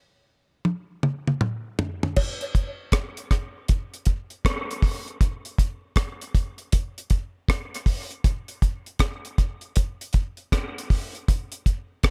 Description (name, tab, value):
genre	reggae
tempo	79 BPM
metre	4/4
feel	swing 64% on 16ths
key	none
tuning	none
part	deep reggae drum kit	drums	0.6-12.1 s	crash cymbal, hi-hat, kick drum, rim click, toms	-25 LUFS	equal	none
part	cowbell	percussion	2.2-2.4 s	none	-34 LUFS	equal	dub echo
room	light reverb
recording	none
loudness	-26 LUFS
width	mono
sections	0.0-2.2 A section; 2.2-12.1 A section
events	break 0.0-2.2; drum fill 0.7-2.2; part muted 2.2-12.1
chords	none